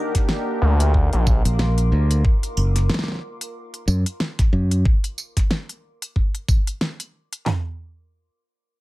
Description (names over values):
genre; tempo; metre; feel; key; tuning
glitch hop; 92 BPM; 4/4; swing 57% on 16ths; unclear; A4 = 439 Hz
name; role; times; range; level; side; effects
warm analog pad; sustained chords; 0.0-2.2 s; Bb3 to G4; -31 LUFS; right 3 dB; chorus, sidechain pumping
deep dark ambient pad; texture; 0.0-2.2 s; Bb4 to D6; -30 LUFS; left 2 dB; chorus, built-in reverb, sidechain pumping
pop drum kit; drums; 0.1-7.4 s; hi-hat, snare drum, tambourine; -26 LUFS; equal; small room reverb
pop drum kit; drums; 0.2-7.6 s; handclaps, kick drum, snare drum, toms; -19 LUFS; equal; small room reverb
gritty driven synth bass; bass; 0.6-1.4 s; Bb1 to D2; -17 LUFS; equal; overdrive
modern bright fingered electric bass; bass; 1.5-4.8 s; Gb1 to Gb2; -18 LUFS; equal; tube saturation
room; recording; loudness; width
little or no reverb; none; -18 LUFS; side -19 dB against mid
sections
0.0-7.5 A section; 7.5-8.8 B section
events
drop 0.0-7.5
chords
0.0 Bb69; 2.2 N.C.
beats
0.29 0.94 1.59 | 2.25 2.90 3.55 4.20 | 4.85 5.51 6.16 6.81 | 7.46